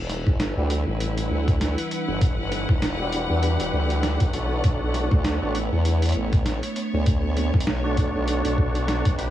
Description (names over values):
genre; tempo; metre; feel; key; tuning
glitch hop; 99 BPM; 4/4; swing 57% on 16ths; E dorian; A4 = 439 Hz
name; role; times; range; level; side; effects
warbly tape-like pad; sustained chords; 0.2-9.3 s; E3 to F#5; -31 LUFS; right 2 dB; chorus, built-in reverb, sidechain pumping
formant-sweep wobble bass; bass; 0.0-9.3 s; E1 to E2; -24 LUFS; equal; chorus, tube saturation
rich studio string section; texture; 0.0-9.3 s; B3 to F#5; -31 LUFS; left 2 dB; sidechain pumping
boom bap sampler-style drum kit; drums; 0.1-9.3 s; hi-hat, snare drum; -30 LUFS; equal; none
electronic kick drum; drums; 0.3-9.2 s; none; -22 LUFS; equal; none
tonewheel organ; stabs; 0.6-9.3 s; D4 to C#5; -30 LUFS; equal; chorus vibrato, vintage 12-bit sampler grit, sidechain pumping, low-pass filter, dub echo
room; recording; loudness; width
little or no reverb; vinyl crackle; -21 LUFS; side -12 dB against mid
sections
0.0-9.3 A section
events
filter sweep on tonewheel organ 0.0-9.3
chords
0.0 Em9; 4.6 Bm7